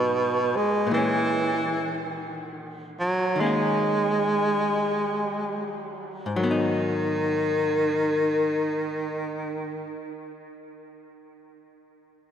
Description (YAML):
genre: jazz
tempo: 36-54 BPM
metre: 4/4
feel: swing 68% on 8ths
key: G# minor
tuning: A4 = 437 Hz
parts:
  - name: warm baritone saxophone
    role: melody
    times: 0.0-10.0 s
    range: B2 to G#3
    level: -24 LUFS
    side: right 1 dB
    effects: analog delay
  - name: archtop guitar, miked and amplified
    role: accompaniment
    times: 0.0-10.2 s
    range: G#2 to G#4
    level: -29 LUFS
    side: left 2 dB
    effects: none
room: wet lush hall reverb, RT60 2.8 s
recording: dreamy mix soaked in reverb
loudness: -23 LUFS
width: side -8 dB against mid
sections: 0.0-6.3 A section; 6.3-12.3 B section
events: slowing down 0.0-6.3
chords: 0.0 G#m7; 0.9 A#m7b5; 3.4 D#7sus4; 6.3 G#m7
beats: | 0.90 2.09 3.38 4.78 | 6.33 7.97 9.62